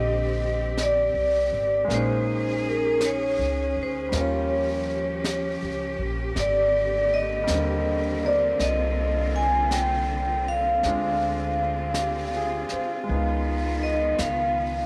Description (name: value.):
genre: jazz ballad.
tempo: 54 BPM.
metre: 4/4.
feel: swing 67% on 8ths.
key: Eb major.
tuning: A4 = 436 Hz.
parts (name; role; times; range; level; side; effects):
vibraphone with medium hard mallets; melody; 0.0-14.9 s; Bb4 to Ab5; -27 LUFS; equal; none.
clear baby grand piano; accompaniment; 0.0-14.9 s; D3 to C5; -34 LUFS; equal; none.
bright symphonic cello section; sustained chords; 0.0-14.9 s; D3 to Ab4; -34 LUFS; equal; none.
upright bass; bass; 0.0-14.9 s; Ab1 to Eb2; -32 LUFS; equal; none.
jazz brush drum kit; drums; 0.8-14.9 s; brushed snare drum, hi-hat, snare drum; -38 LUFS; equal; none.
room: light reverb, small room ambience.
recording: none.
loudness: -25 LUFS.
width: mono.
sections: 0.0-14.9 A section.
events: none.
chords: 0.0 Eb6; 1.9 Bbm7; 4.1 Eb9; 6.4 Abmaj9#11; 10.8 Dm7b5; 13.1 Db9.